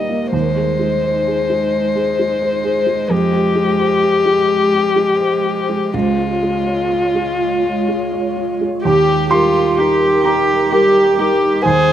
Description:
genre	neoclassical piano and strings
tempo	43 BPM (dotted quarters)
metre	6/8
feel	rubato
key	unclear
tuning	A4 = 442 Hz
part	dark violin	melody	0.0-11.9 s	F4 to Eb5	-16 LUFS	left 4 dB	slapback echo
part	rich cello	second line	0.0-11.9 s	G3 to Ab4	-21 LUFS	right 6 dB	none
part	felt-muted upright piano	accompaniment	0.0-11.9 s	Db2 to C6	-19 LUFS	right 3 dB	slapback echo
part	glassy FM pad	sustained chords	0.0-11.9 s	G3 to Db5	-24 LUFS	equal	ensemble chorus, built-in reverb, phaser
room	light reverb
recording	recorded outdoors, with no room sound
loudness	-13 LUFS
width	side -10 dB against mid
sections	0.0-8.8 A section; 8.8-11.9 B section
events	none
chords	0.3 Ab/Eb; 3.1 Fmadd9; 5.9 Db; 8.8 Eb

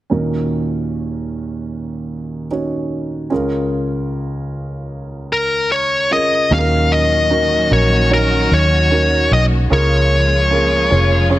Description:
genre	pop ballad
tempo	75 BPM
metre	4/4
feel	straight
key	Eb minor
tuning	A4 = 439 Hz
part	dark concert grand piano	accompaniment	0.1-11.4 s	Db2 to Db5	-20 LUFS	right 2 dB	none
part	fuzz lead guitar	melody	5.3-11.3 s	Bb4 to F5	-16 LUFS	left 1 dB	distortion
part	warm symphonic string section	sustained chords	6.5-11.4 s	Db3 to Gb4	-23 LUFS	left 1 dB	none
part	vintage muted fingered electric bass	bass	6.5-11.4 s	F1 to Eb2	-16 LUFS	equal	none
room	light reverb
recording	none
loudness	-14 LUFS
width	side -15 dB against mid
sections	0.1-6.5 A section; 6.5-11.4 B section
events	none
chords	0.1 Ebm7; 3.3 Bbm7/Db; 6.5 Ebm7; 9.7 Bbm7

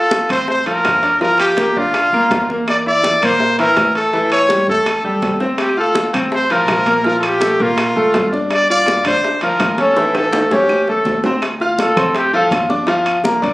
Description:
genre	latin, salsa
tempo	165 BPM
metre	4/4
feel	straight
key	D minor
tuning	A4 = 440 Hz
part	bright trumpet	melody	0.0-11.2 s	F4 to D5	-15 LUFS	equal	none
part	bright grand piano	accompaniment	0.0-13.5 s	E3 to F6	-17 LUFS	equal	none
part	bongos	percussion	0.1-13.5 s	none	-25 LUFS	left 2 dB	none
part	congas	percussion	0.1-13.5 s	none	-27 LUFS	equal	none
part	timbales	percussion	0.1-13.5 s	none	-23 LUFS	right 2 dB	none
part	upright bass	bass	0.3-13.5 s	G1 to Bb2	-28 LUFS	equal	none
part	claves	percussion	0.3-13.2 s	none	-28 LUFS	equal	none
part	clear trumpet	melody	11.8-12.5 s	G4 to A4	-16 LUFS	equal	none
room	light reverb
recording	recorded on a phone in the room, studio reverb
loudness	-13 LUFS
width	side -19 dB against mid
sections	0.0-11.4 A section; 11.4-13.5 B section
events	drum fill 4.9-5.6, 10.0-11.4; trumpet solo 11.4-13.5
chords	0.0 Dm7; 1.2 Gm7; 2.7 Bbmaj9#11; 4.1 A7; 5.6 Dm7; 7.1 Bbmaj7; 8.5 Gm7; 10.0 A; 11.4 Dm7; 12.9 Gm7

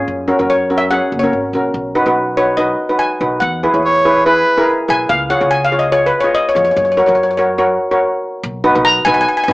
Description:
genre	calypso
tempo	144 BPM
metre	4/4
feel	straight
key	B major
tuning	A4 = 440 Hz
part	steel pan	accompaniment	0.0-9.5 s	C#4 to D#5	-15 LUFS	equal	none
part	upright bass	bass	0.0-9.5 s	F#1 to F#2	-25 LUFS	equal	none
part	steel pan	melody	0.5-9.5 s	B4 to A#5	-14 LUFS	left 1 dB	plate reverb
part	warm alto saxophone	second line	3.8-4.7 s	B4 to C#5	-12 LUFS	right 1 dB	none
room	wet small room reverb, RT60 0.6 s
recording	small speaker sound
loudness	-12 LUFS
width	side -20 dB against mid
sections	0.0-8.4 A section; 8.4-9.5 B section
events	steel pan solo 0.0-8.4; stop 8.0-8.4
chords	0.1 F#add9; 1.7 B; 3.4 E; 5.1 C#; 6.8 F#; 8.4 B

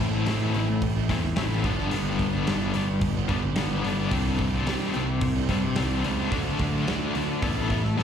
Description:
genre	quiet-loud alternative rock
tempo	109 BPM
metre	4/4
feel	straight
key	A dorian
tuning	A4 = 435 Hz
part	tonewheel organ	sustained chords	0.0-8.0 s	D4 to A5	-42 LUFS	right 5 dB	none
part	crunchy overdriven guitar	riff	0.0-8.0 s	G2 to A4	-28 LUFS	left 8 dB	tremolo
part	thick fuzz guitar	riff	0.0-8.0 s	G2 to A4	-31 LUFS	right 13 dB	distortion, slapback echo
part	fuzz picked electric bass	bass	0.0-8.0 s	G1 to C3	-28 LUFS	equal	overdrive
part	big rock drum kit	drums	0.3-8.0 s	hi-hat, kick drum, snare drum	-30 LUFS	right 1 dB	none
room	little or no reverb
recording	live gig heard through the venue's PA, recital hall reverb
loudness	-23 LUFS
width	side -8 dB against mid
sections	0.0-8.0 A section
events	none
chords	0.0 Am7; 1.6 G; 4.1 Csus2; 6.3 D; 7.4 Asus2

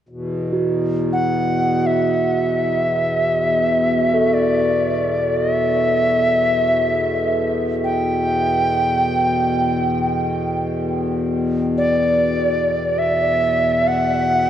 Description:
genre	world meditative, free-time meditation music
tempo	free time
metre	none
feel	none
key	E minor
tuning	A4 = 439 Hz
part	pedal harmonium	drone	0.1-14.5 s	E2 to B2	-21 LUFS	left 2 dB	stereo widening
part	bronze singing bowl	texture	0.5-11.7 s	F#4 to A4	-26 LUFS	right 2 dB	none
part	bright reedy Native American-style cedar flute	melody	1.1-14.5 s	D5 to G5	-18 LUFS	right 1 dB	tape echo
room	wet huge ambient reverb, RT60 6.8 s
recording	worn, warbling old tape, cassette tape, warbly pitch drift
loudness	-16 LUFS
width	side -10 dB against mid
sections	0.1-14.5 A section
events	none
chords	none

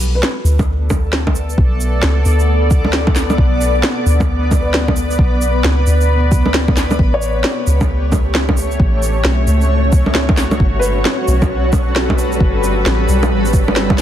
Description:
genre	future garage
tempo	133 BPM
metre	4/4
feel	swing 63% on 16ths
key	B minor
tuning	A4 = 440 Hz
part	granular cloud pad	sustained chords	0.0-14.0 s	G3 to D5	-20 LUFS	left 1 dB	built-in reverb, sidechain pumping
part	soft 808-style bass	bass	0.0-14.0 s	G1 to D2	-16 LUFS	equal	tube saturation, sidechain pumping
part	electronic shaker, snare drum and bongos	drums	0.0-14.0 s	none	-18 LUFS	right 1 dB	none
part	felt-muted upright piano	accompaniment	0.2-14.0 s	B4 to D5	-26 LUFS	left 1 dB	vintage 12-bit sampler grit, sidechain pumping, dub echo
part	electronic kick drum	drums	0.6-14.0 s	none	-15 LUFS	equal	none
part	flickering grainy texture	texture	7.7-14.0 s	C#4 to C#5	-26 LUFS	right 1 dB	built-in reverb
room	light reverb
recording	dense, heavily limited modern master, vinyl crackle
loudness	-12 LUFS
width	side -11 dB against mid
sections	0.0-14.0 A section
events	none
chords	0.0 Bm7; 7.0 A7; 10.6 Gmaj9

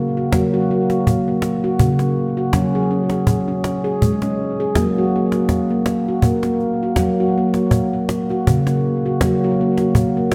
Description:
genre	world meditative, meditative tuned percussion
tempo	81 BPM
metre	3/4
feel	swing 54% on 16ths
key	F# major pentatonic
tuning	A4 = 440 Hz
part	handpan	arpeggios	0.0-10.3 s	C#3 to G#4	-19 LUFS	equal	diffuse ambient delay
part	cajon	percussion	0.3-10.3 s	none	-23 LUFS	equal	none
room	wet concert hall reverb, RT60 2.2 s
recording	none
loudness	-18 LUFS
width	mono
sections	0.0-10.3 A section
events	none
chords	0.0 F#; 2.5 C#5/F#; 4.8 F#

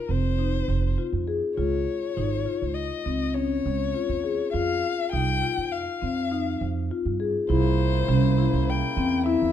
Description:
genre	contemporary instrumental, chamber music in an uneven meter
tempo	101 BPM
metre	5/4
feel	straight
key	F minor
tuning	A4 = 440 Hz
part	dark violin	melody	0.0-9.5 s	Bb4 to G5	-30 LUFS	left 7 dB	none
part	marimba with soft mallets	arpeggios	0.1-9.5 s	C4 to Ab4	-27 LUFS	left 4 dB	none
part	upright bass	bass	0.1-9.5 s	F1 to G2	-26 LUFS	right 4 dB	none
part	pedal harmonium	sustained chords	7.5-9.5 s	Db3 to E4	-34 LUFS	right 1 dB	none
room	moderate recital hall reverb, RT60 1.4 s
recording	dark, warm production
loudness	-23 LUFS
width	side -10 dB against mid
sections	0.0-7.5 A section; 7.5-9.5 B section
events	none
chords	0.0 F7(no3); 1.6 Db; 4.5 F5; 7.5 C7b9

